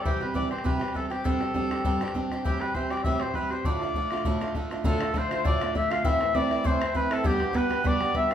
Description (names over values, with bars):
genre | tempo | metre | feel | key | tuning
celtic folk, Celtic reel | 200 BPM | 4/4 | swing 54% on 8ths | D dorian | A4 = 438 Hz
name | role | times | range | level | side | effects
clear oboe | melody | 0.0-8.3 s | G4 to F5 | -30 LUFS | equal | none
picked swing-style acoustic guitar | accompaniment | 0.0-8.3 s | D2 to G4 | -28 LUFS | right 2 dB | none
bodhran | percussion | 0.1-8.3 s | none | -30 LUFS | left 1 dB | none
mellow wooden flute | second line | 4.8-8.3 s | G4 to G5 | -31 LUFS | left 4 dB | none
room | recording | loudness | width
wet large studio reverb, RT60 1.1 s | band playing live in one room | -24 LUFS | side -9 dB against mid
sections
0.0-4.9 A section; 4.9-8.3 B section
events
none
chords
0.0 C; 1.3 Gsus4; 2.5 Am7; 3.7 Dm; 6.1 Am; 7.2 G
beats
| 0.05 0.35 0.65 0.95 | 1.25 1.55 1.85 2.15 | 2.45 2.75 3.05 3.35 | 3.65 3.95 4.25 4.55 | 4.85 5.15 5.45 5.75 | 6.05 6.35 6.65 6.95 | 7.25 7.55 7.85 8.15